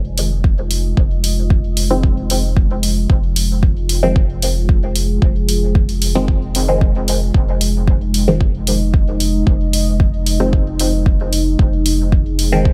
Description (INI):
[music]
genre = dub techno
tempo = 113 BPM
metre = 4/4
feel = straight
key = F minor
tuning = A4 = 440 Hz
[part]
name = deep dark ambient pad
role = sustained chords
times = 0.1-12.7 s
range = Ab3 to Eb5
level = -26 LUFS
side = equal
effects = chorus, built-in reverb, sidechain pumping
[part]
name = warm sub bass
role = bass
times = 0.0-12.7 s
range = F1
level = -21 LUFS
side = equal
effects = sidechain pumping
[part]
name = electronic hi-hat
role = drums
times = 0.2-12.5 s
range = none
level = -24 LUFS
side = equal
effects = none
[part]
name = electronic kick drum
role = drums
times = 0.4-12.7 s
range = none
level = -17 LUFS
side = equal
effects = none
[part]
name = filtered dub chord stab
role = stabs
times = 1.9-12.7 s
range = Eb3 to C4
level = -23 LUFS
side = equal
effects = phaser, sidechain pumping, dub echo
[sound]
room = little or no reverb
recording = none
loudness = -16 LUFS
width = mono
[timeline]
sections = 0.0-12.7 A section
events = none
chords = 0.0 Fm7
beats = 0.44 | 0.97 1.50 2.04 2.57 | 3.10 3.63 4.16 4.69 | 5.22 5.75 6.28 6.81 | 7.34 7.88 8.41 8.94 | 9.47 10.00 10.53 11.06 | 11.59 12.12 12.65